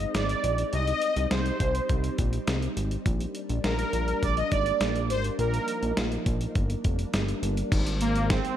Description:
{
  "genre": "synth-pop",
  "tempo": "103 BPM",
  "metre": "4/4",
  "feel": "straight",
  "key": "C minor",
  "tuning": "A4 = 438 Hz",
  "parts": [
    { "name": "analog synth brass", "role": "melody", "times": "0.0-8.6 s", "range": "Bb3 to Eb5", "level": "-28 LUFS", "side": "right 1 dB", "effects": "chorus" },
    { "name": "soft string machine", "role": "sustained chords", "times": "0.0-8.6 s", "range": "Eb3 to Eb4", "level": "-34 LUFS", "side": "equal", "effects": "ensemble chorus" },
    { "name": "fat analog bass", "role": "bass", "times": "0.0-8.4 s", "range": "F1 to C2", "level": "-28 LUFS", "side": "equal", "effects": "none" },
    { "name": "dusty soul sampler-style drum kit", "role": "drums", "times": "0.0-8.6 s", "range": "crash cymbal, hi-hat, kick drum, snare drum", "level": "-29 LUFS", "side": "equal", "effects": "overdrive, gated reverb" }
  ],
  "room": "light reverb",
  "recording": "none",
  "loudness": "-24 LUFS",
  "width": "side -11 dB against mid",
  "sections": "0.0-7.7 A section",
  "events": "none",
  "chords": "0.0 Ab; 0.7 Cm; 3.1 Gm/Bb; 5.4 Bbsus4; 6.6 Gm; 7.7 Ab"
}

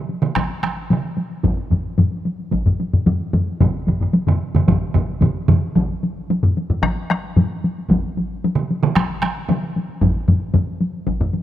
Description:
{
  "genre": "japanese traditional, taiko drum ensemble",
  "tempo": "112 BPM",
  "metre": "4/4",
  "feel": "straight",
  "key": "none",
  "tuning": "none",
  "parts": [
    { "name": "taiko ensemble", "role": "percussion", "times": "0.1-11.4 s", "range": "none", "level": "-21 LUFS", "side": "left 1 dB", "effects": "none" },
    { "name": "taiko ensemble", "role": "percussion", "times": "0.2-9.6 s", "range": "none", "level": "-21 LUFS", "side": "right 5 dB", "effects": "none" },
    { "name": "taiko ensemble", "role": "percussion", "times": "0.4-11.2 s", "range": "none", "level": "-28 LUFS", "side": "equal", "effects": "none" },
    { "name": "taiko ensemble", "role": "percussion", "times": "1.4-11.3 s", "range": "none", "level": "-18 LUFS", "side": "left 1 dB", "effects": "none" }
  ],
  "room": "light reverb, small room ambience",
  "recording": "rough home demo mix",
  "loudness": "-17 LUFS",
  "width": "side -12 dB against mid",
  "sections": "0.0-11.4 A section",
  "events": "speeding up 0.0-11.4",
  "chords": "none"
}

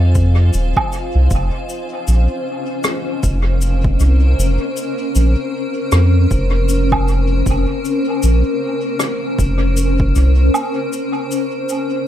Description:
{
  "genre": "ambient dub",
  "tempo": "78 BPM",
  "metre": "4/4",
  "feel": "swing 59% on 16ths",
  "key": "unclear",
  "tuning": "A4 = 440 Hz",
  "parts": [
    { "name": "granular cloud pad", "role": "sustained chords", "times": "0.0-12.1 s", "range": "Db4 to Ab5", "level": "-20 LUFS", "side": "left 1 dB", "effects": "built-in reverb" },
    { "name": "soft dub sub bass", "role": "bass", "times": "0.0-10.5 s", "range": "Eb1 to F2", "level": "-13 LUFS", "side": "equal", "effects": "none" },
    { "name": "cabasa, woodblock and rim click", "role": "drums", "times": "0.1-11.9 s", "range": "none", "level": "-24 LUFS", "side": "right 1 dB", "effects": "dub echo" },
    { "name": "electronic kick drum", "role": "drums", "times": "0.2-10.1 s", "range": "none", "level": "-20 LUFS", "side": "equal", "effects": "overdrive" }
  ],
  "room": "small room ambience",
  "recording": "echo-heavy mix",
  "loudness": "-14 LUFS",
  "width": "side -11 dB against mid",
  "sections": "0.0-12.1 A section",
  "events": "break 10.5-12.1",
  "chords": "0.0 Fm7; 1.3 Bbmadd9/F"
}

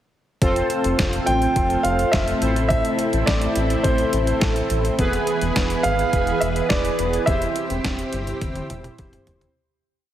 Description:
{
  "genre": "synth-pop",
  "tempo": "105 BPM",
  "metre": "4/4",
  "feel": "straight",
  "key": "unclear",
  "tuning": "A4 = 442 Hz",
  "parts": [
    { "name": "analog synth brass", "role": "accompaniment", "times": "0.4-9.5 s", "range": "E3 to C5", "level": "-24 LUFS", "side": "right 1 dB", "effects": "chorus" },
    { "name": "string machine, full ensemble", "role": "sustained chords", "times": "0.4-9.5 s", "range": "E3 to B4", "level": "-27 LUFS", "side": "equal", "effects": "ensemble chorus" },
    { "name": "round analog bass", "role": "bass", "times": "0.4-9.5 s", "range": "E1 to A1", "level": "-25 LUFS", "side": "equal", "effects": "none" },
    { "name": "detuned 8-bit digital drum machine", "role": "drums", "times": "0.4-9.5 s", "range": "hi-hat, kick drum, snare drum, toms", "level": "-24 LUFS", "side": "equal", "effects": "none" },
    { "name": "clear concert grand piano", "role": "melody", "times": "1.3-9.2 s", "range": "A4 to G5", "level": "-24 LUFS", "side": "right 1 dB", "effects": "none" }
  ],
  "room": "moderate scoring stage reverb, RT60 1.9 s",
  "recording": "heavily compressed radio sound, multiband compression",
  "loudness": "-18 LUFS",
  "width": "side -11 dB against mid",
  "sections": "0.4-9.6 verse",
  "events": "fade-out 7.3-9.6; drum fill 8.4-9.6",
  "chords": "0.4 F; 2.4 Am; 5.0 E; 7.3 C/E"
}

